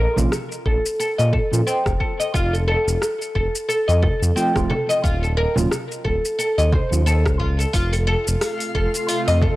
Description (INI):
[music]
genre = organic downtempo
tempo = 89 BPM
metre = 4/4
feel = swing 57% on 16ths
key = unclear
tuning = A4 = 437 Hz
[part]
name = oud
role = arpeggios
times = 0.0-9.5 s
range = C4 to Eb5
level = -22 LUFS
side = equal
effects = low-pass filter, analog delay
[part]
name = smooth synth bass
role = bass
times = 0.0-9.5 s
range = Eb1 to Bb2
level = -20 LUFS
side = equal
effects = tube saturation, sidechain pumping
[part]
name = mellow tine electric piano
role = accompaniment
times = 0.2-7.0 s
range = F3 to F4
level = -27 LUFS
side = right 3 dB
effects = slow stereo tremolo, sidechain pumping, analog delay
[part]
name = deep house drum kit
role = drums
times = 0.2-9.4 s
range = hi-hat, rim click, shaker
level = -27 LUFS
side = left 1 dB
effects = overdrive
[part]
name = frame drum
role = percussion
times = 0.2-9.6 s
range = none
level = -27 LUFS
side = right 1 dB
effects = none
[part]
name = electronic kick drum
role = drums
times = 0.7-9.6 s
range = none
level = -23 LUFS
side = equal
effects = overdrive
[part]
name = granular cloud pad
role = sustained chords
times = 8.4-9.6 s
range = C3 to F4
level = -29 LUFS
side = equal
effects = built-in reverb, sidechain pumping
[part]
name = twinkling granular texture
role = texture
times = 8.0-9.6 s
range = F4 to F5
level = -31 LUFS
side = left 2 dB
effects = built-in reverb
[sound]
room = little or no reverb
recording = dry, gritty hardware recording, transformer saturation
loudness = -18 LUFS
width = side -17 dB against mid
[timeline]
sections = 0.0-9.6 A section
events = filter sweep on tine electric piano 0.0-9.6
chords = 0.0 Bb5; 2.3 F; 5.0 Eb7(no3); 7.7 F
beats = 0.32 1.00 1.67 | 2.34 3.02 3.69 4.37 | 5.04 5.71 6.39 7.06 | 7.74 8.41 9.09